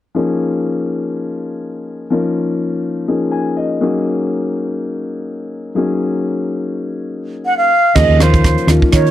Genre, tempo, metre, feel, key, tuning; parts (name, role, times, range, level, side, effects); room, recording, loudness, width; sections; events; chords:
electric jazz fusion; 123 BPM; 4/4; swing 56% on 16ths; A4 = 437 Hz
dark concert grand piano; accompaniment; 0.1-9.1 s; F3 to Ab5; -17 LUFS; left 3 dB
mellow concert flute; melody; 7.5-9.1 s; C5 to Gb5; -13 LUFS; right 2 dB; slapback echo
woody fretless electric bass; bass; 8.0-9.1 s; Eb2 to Eb3; -12 LUFS; right 1 dB
crisp fusion drum kit; drums; 8.0-9.1 s; crash cymbal, hi-hat, kick drum, rim click; -15 LUFS; right 1 dB
light reverb; dry, close 1970s-style studio recording; -14 LUFS; side -12 dB against mid
0.2-8.0 A section; 8.0-9.1 B section
grand piano fill 3.1-4.1
0.2 Eb9sus4; 3.8 Ab9sus4; 8.0 Eb9sus4